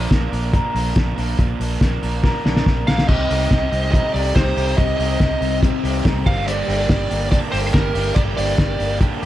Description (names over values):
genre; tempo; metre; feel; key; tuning
jangly indie pop; 142 BPM; 4/4; straight; C minor; A4 = 443 Hz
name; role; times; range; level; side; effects
crunchy overdriven guitar; accompaniment; 0.0-9.3 s; G2 to Bb4; -27 LUFS; right 7 dB; none
electric guitar through a small old amp; arpeggios; 0.0-9.3 s; G2 to Bb4; -27 LUFS; left 4 dB; wide subtle chorus, slapback echo
vintage muted fingered electric bass; bass; 0.0-9.3 s; G1 to C2; -23 LUFS; equal; none
cloth-damped thuddy drum kit; drums; 0.1-9.3 s; crash cymbal, hi-hat, kick drum, ride cymbal, snare drum; -19 LUFS; equal; none
fuzz lead guitar; melody; 2.9-9.0 s; Bb4 to F5; -23 LUFS; right 2 dB; distortion, slapback echo
phased string machine; sustained chords; 3.1-9.3 s; Bb4 to Eb6; -34 LUFS; left 1 dB; ensemble chorus, phaser
room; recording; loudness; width
light reverb; dark, warm production; -16 LUFS; side -14 dB against mid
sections
0.0-3.1 A section; 3.1-9.3 B section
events
drum fill 2.2-3.1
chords
0.0 Bb; 3.1 Cm; 6.3 Gm